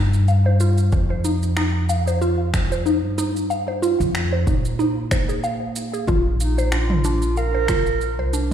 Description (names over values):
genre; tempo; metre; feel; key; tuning
organic downtempo; 93 BPM; 4/4; swing 55% on 16ths; unclear; A4 = 436 Hz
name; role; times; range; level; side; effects
mallet-like synth pluck; arpeggios; 0.0-8.4 s; D4 to F5; -24 LUFS; equal; chorus, phaser, tape echo
upright bass; bass; 0.0-8.5 s; Bb1 to Bb2; -21 LUFS; equal; sidechain pumping
deep house drum kit; drums; 0.1-8.5 s; finger snaps, shaker, toms; -29 LUFS; right 1 dB; overdrive
electronic kick drum; drums; 0.9-7.8 s; none; -23 LUFS; equal; overdrive
dark clarinet; melody; 6.4-8.3 s; Eb4 to Bb4; -24 LUFS; right 3 dB; none
room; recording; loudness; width
light reverb, digital ambience; played on a big sound system in a bare room, large studio reverb; -18 LUFS; side -9 dB against mid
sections
0.0-8.5 A section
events
filter sweep on synth pluck 0.0-8.5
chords
0.0 Eb; 0.9 F7sus2; 6.1 Bbadd9